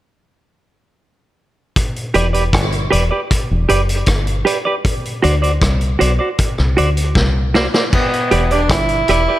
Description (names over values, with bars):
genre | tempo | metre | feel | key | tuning
dub reggae | 78 BPM | 4/4 | straight | E minor | A4 = 440 Hz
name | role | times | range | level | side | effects
vintage drum kit | drums | 1.8-9.3 s | crash cymbal, hi-hat, kick drum, rim click, snare drum | -18 LUFS | equal | none
clean electric guitar | accompaniment | 2.1-9.4 s | F#4 to D5 | -18 LUFS | right 3 dB | wide subtle chorus, dub echo
deep dub fingered electric bass | bass | 2.2-9.3 s | E1 to D2 | -16 LUFS | equal | none
warm tenor saxophone | melody | 7.9-9.4 s | B3 to E4 | -16 LUFS | right 1 dB | dub echo
room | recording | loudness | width
light reverb, studio reverb | none | -13 LUFS | side -14 dB against mid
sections
1.8-7.9 A section; 7.9-9.4 B section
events
drum fill 7.2-7.9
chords
1.8 Em7; 4.8 D7; 7.9 Em7